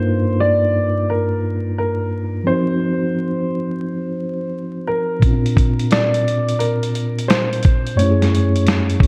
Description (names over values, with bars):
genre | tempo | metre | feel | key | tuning
lo-fi hip hop | 87 BPM | 4/4 | swing 66% on 16ths | unclear | A4 = 440 Hz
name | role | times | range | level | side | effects
dark upright piano | melody | 0.0-9.1 s | Bb4 to D5 | -24 LUFS | equal | low-pass filter, tape echo
mellow tine electric piano | accompaniment | 0.0-9.1 s | F#2 to C5 | -21 LUFS | equal | cassette tape, low-pass filter
dusty soul sampler-style drum kit | drums | 5.2-9.1 s | hi-hat, kick drum, snare drum | -19 LUFS | equal | none
room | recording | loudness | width
light reverb | vinyl crackle | -18 LUFS | mono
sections
0.0-9.1 A section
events
none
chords
0.0 Gm7; 2.5 F5; 5.2 Bb; 8.0 F#m7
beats
0.40 1.09 1.78 | 2.47 3.16 3.85 4.54 | 5.23 5.92 6.61 7.30 | 7.99 8.68